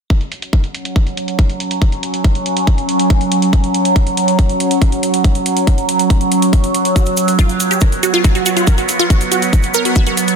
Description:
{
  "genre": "psychedelic trance",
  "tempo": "140 BPM",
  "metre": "4/4",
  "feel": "straight",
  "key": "unclear",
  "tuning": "A4 = 440 Hz",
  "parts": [
    { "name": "overtone-sweeping drone", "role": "sustained chords", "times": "0.8-10.4 s", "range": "F#3 to C#4", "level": "-16 LUFS", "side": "right 2 dB", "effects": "chorus, built-in reverb, sidechain pumping" },
    { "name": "electronic hi-hat", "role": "drums", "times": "0.1-10.4 s", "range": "none", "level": "-23 LUFS", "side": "right 1 dB", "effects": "overdrive, low-pass filter on hats, studio reverb" },
    { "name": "electronic kick drum", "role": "drums", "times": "0.1-10.0 s", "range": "none", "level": "-13 LUFS", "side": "equal", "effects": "studio reverb" },
    { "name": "wide unison pluck", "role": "riff", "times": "7.0-10.1 s", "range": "E#4 to A#4", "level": "-17 LUFS", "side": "moving between left 4 dB and right 3 dB", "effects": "auto-pan, sidechain pumping, tape echo" },
    { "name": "cabasa", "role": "percussion", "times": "7.0-10.4 s", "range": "none", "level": "-24 LUFS", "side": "right 3 dB", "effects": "none" }
  ],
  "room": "light reverb",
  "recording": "dense, heavily limited modern master",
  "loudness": "-12 LUFS",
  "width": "side -6 dB against mid",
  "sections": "0.1-10.4 A section",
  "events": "none",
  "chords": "0.1 F#5"
}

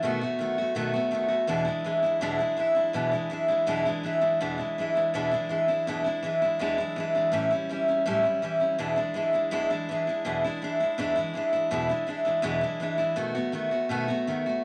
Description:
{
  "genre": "rock",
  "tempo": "164 BPM",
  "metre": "4/4",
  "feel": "straight",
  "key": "E mixolydian",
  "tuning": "A4 = 439 Hz",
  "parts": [
    { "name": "picked steel-string acoustic guitar", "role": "solo", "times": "0.0-14.6 s", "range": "E2 to F#4", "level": "-27 LUFS", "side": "equal", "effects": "none" }
  ],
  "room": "moderate large studio reverb, RT60 0.8 s",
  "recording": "none",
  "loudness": "-27 LUFS",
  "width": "mono",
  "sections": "0.0-1.5 A section; 1.5-14.6 B section",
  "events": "none",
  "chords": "0.0 B7; 1.5 E7; 7.3 A7; 8.8 E7; 13.2 B7"
}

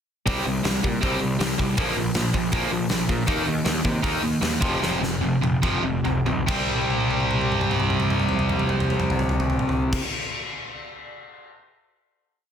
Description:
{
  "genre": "punk rock",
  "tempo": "135-160 BPM",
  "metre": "4/4",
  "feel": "straight",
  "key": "unclear",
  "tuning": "A4 = 440 Hz",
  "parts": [
    { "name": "distorted electric guitar", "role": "riff", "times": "0.3-10.0 s", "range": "F2 to Eb4", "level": "-23 LUFS", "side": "equal", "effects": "overdrive" },
    { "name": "fuzz picked electric bass", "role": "bass", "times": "0.3-10.0 s", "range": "F1 to C3", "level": "-29 LUFS", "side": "equal", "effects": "overdrive" },
    { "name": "big rock drum kit", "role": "drums", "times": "0.3-11.5 s", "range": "crash cymbal, hi-hat, kick drum, snare drum, toms", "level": "-26 LUFS", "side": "equal", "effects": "none" }
  ],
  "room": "little or no reverb",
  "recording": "dense, heavily limited modern master",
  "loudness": "-21 LUFS",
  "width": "side -8 dB against mid",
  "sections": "0.3-6.5 verse; 6.5-10.0 final chord",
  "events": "slowing down 3.3-6.5; drum fill 4.8-6.5, 6.7-9.9",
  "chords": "0.3 C5; 1.8 Bb5; 3.3 Eb5; 4.6 F5; 6.5 C5"
}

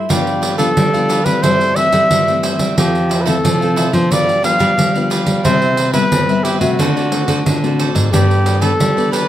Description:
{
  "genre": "samba and choro",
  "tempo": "90 BPM",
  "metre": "4/4",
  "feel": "straight",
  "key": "unclear",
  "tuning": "A4 = 436 Hz",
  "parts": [
    { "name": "cavaquinho", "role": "accompaniment", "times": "0.0-9.3 s", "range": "D4 to F5", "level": "-23 LUFS", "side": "right 3 dB", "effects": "none" },
    { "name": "nylon-string guitar", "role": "accompaniment", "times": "0.0-9.3 s", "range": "F2 to A4", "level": "-21 LUFS", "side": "left 5 dB", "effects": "none" },
    { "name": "dark trumpet", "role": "melody", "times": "0.1-9.3 s", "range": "F#4 to F5", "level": "-17 LUFS", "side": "equal", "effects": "tape echo" },
    { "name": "nylon-string guitar", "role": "bass", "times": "0.1-9.2 s", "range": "G2 to C4", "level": "-18 LUFS", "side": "equal", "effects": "none" },
    { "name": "pandeiro", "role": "percussion", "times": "0.1-9.3 s", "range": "none", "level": "-19 LUFS", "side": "right 2 dB", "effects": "none" }
  ],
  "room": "moderate studio reverb, RT60 0.5 s",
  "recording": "none",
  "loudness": "-12 LUFS",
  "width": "side -12 dB against mid",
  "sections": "0.1-9.3 A section",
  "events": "none",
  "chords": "0.1 G7; 1.4 C6/G; 2.8 Fmaj7; 4.1 G7; 5.5 Cmaj7; 6.8 D7; 8.1 Gadd9"
}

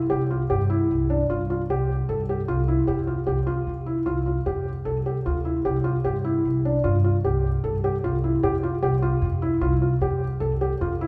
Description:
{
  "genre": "contemporary instrumental, chamber music in an uneven meter",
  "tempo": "151 BPM",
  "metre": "7/4",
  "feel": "straight",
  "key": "C major",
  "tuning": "A4 = 440 Hz",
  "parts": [
    { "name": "felt-muted upright piano", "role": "arpeggios", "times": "0.1-11.1 s", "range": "D4 to A4", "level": "-27 LUFS", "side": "equal", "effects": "none" },
    { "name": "upright bass", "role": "bass", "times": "0.1-11.1 s", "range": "C2 to G2", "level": "-27 LUFS", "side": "equal", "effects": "none" }
  ],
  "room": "wet recital hall reverb, RT60 1.7 s",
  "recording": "heard from further back in the room",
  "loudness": "-24 LUFS",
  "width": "mono",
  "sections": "0.0-11.1 A section",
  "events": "none",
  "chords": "0.1 Csus4; 8.4 F5"
}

